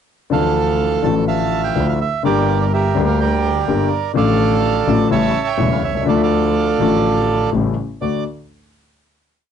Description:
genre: tango.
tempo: 125 BPM.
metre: 4/4.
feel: rubato.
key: D minor.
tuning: A4 = 442 Hz.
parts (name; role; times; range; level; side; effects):
bandoneon; melody; 0.3-8.2 s; G4 to A5; -19 LUFS; right 8 dB; cassette tape.
warm concert grand piano; accompaniment; 0.3-8.2 s; E1 to G4; -18 LUFS; left 7 dB; cassette tape.
clear double bass; bass; 0.3-8.2 s; E1 to D2; -21 LUFS; right 2 dB; none.
room: wet small room reverb, RT60 0.5 s.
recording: home recording on cassette, nothing above 10.9 kHz.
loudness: -15 LUFS.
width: side -8 dB against mid.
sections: 0.3-8.0 A section; 8.0-9.5 final chord.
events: none.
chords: 0.3 Dmadd9; 2.2 Gm; 4.2 Dm/A; 5.1 A7; 6.1 Dm; 7.5 A7; 8.0 D.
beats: | 0.32 0.80 1.28 1.76 | 2.24 2.72 3.20 3.68 | 4.16 4.63 5.11 5.59 | 6.07 6.55 7.04 7.53 | 8.02.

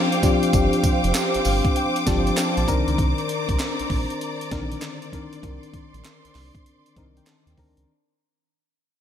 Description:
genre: R&B, new jack swing.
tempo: 98 BPM.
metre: 4/4.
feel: swing 65% on 16ths.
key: C minor.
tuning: A4 = 440 Hz.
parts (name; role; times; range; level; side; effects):
FM electric piano; accompaniment; 0.0-7.9 s; D3 to Bb5; -24 LUFS; left 3 dB; chorus.
warm symphonic string section; sustained chords; 0.0-7.9 s; C5 to D6; -26 LUFS; right 2 dB; none.
breakbeat sampler-style drum kit; drums; 0.1-7.9 s; handclaps, hi-hat, kick drum, snare drum, tambourine; -24 LUFS; right 1 dB; gated reverb.
round analog bass; bass; 0.5-7.9 s; F1 to Eb2; -25 LUFS; right 1 dB; none.
group handclap; percussion; 1.1-7.5 s; none; -40 LUFS; right 8 dB; none.
room: moderate echo chamber reverb, RT60 1.9 s, digital ambience.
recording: none.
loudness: -19 LUFS.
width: side -9 dB against mid.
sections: 0.0-7.9 A section.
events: fade-out 0.0-7.9; FM electric piano fill 1.1-3.0, 6.7-7.9.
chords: 0.0 G7sus4; 2.7 Cm9.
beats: | 0.53 1.14 1.76 2.37 | 2.98 3.59 4.21 4.82 | 5.43 6.04 6.66 7.27.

